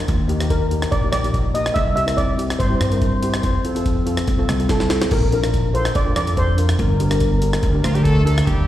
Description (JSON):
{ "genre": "calypso", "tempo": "143 BPM", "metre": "4/4", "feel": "straight", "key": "unclear", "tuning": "A4 = 435 Hz", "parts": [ { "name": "steel pan", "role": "melody", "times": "0.0-7.8 s", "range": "F4 to E5", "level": "-24 LUFS", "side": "left 1 dB", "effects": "plate reverb, slapback echo" }, { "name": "steel pan", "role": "accompaniment", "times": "0.0-8.5 s", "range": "Bb3 to Bb4", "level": "-26 LUFS", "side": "left 1 dB", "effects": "plate reverb, slapback echo" }, { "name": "upright bass", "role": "bass", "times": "0.1-8.7 s", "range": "G1 to G2", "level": "-20 LUFS", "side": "equal", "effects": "none" }, { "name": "jungle sampler-style drum kit", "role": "drums", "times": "0.1-8.6 s", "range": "crash cymbal, hi-hat, kick drum, rim click, snare drum", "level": "-22 LUFS", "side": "equal", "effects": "none" }, { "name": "warm horn section", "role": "second line", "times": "7.8-8.7 s", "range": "F3 to A4", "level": "-24 LUFS", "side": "right 1 dB", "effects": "plate reverb, slapback echo, digital delay" } ], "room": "little or no reverb", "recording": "live gig heard through the venue's PA, recital hall reverb", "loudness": "-16 LUFS", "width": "side -13 dB against mid", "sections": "0.0-8.7 A section", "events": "steel pan solo 0.0-8.7; drum fill 4.7-5.1", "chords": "0.1 Eb; 1.8 C7; 3.4 F; 5.1 Bb; 6.8 Gm", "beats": "| 0.08 0.50 0.92 1.34 | 1.76 2.18 2.60 3.02 | 3.44 3.86 4.28 4.70 | 5.11 5.53 5.95 6.37 | 6.79 7.21 7.63 8.05 | 8.47" }